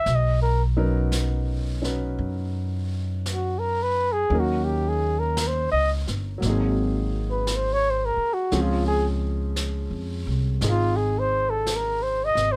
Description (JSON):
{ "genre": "jazz ballad", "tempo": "57 BPM", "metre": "4/4", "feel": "swing 66% on 8ths", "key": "unclear", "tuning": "A4 = 440 Hz", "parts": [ { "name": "breathy flugelhorn", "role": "melody", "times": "0.0-12.6 s", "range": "E#4 to E5", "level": "-26 LUFS", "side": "equal", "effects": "none" }, { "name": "warm grand piano", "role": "accompaniment", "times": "0.0-12.6 s", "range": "E#3 to B4", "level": "-32 LUFS", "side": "equal", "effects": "none" }, { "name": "upright bass", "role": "bass", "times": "0.1-12.6 s", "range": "G1 to F#2", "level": "-28 LUFS", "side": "equal", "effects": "none" }, { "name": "jazz brush drum kit", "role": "drums", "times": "0.1-12.6 s", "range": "brushed snare drum, hi-hat, snare drum", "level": "-38 LUFS", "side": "equal", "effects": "none" } ], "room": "little or no reverb", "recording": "none", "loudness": "-24 LUFS", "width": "mono", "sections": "0.0-12.6 A section", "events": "flugelhorn solo 0.0-12.6", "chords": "0.1 Bmaj9; 4.3 D#m7; 6.4 G#9; 8.5 C#maj7" }